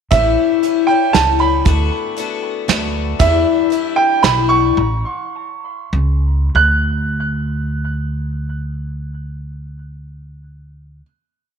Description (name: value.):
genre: indie folk with a building arrangement.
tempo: 93-117 BPM.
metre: 3/4.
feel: straight.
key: D major.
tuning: A4 = 440 Hz.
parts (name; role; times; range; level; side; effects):
bright upright piano; melody; 0.1-11.0 s; E5 to F#6; -18 LUFS; right 5 dB; tape echo.
picked twelve-string acoustic guitar; accompaniment; 0.1-4.8 s; E2 to F#4; -18 LUFS; left 17 dB; none.
upright bass; bass; 0.1-11.0 s; A1 to E2; -19 LUFS; right 1 dB; none.
soft brush drum kit; drums; 0.1-4.4 s; hi-hat, kick drum, snare drum; -18 LUFS; right 4 dB; none.
room: light reverb, studio reverb.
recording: 1960s-style stereo.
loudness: -14 LUFS.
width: side -7 dB against mid.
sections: 0.1-6.6 pre-chorus; 6.6-10.4 final chord.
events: slowing down 3.2-6.6.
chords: 0.1 A7; 1.7 D6; 3.2 Em7; 4.8 A; 6.6 D.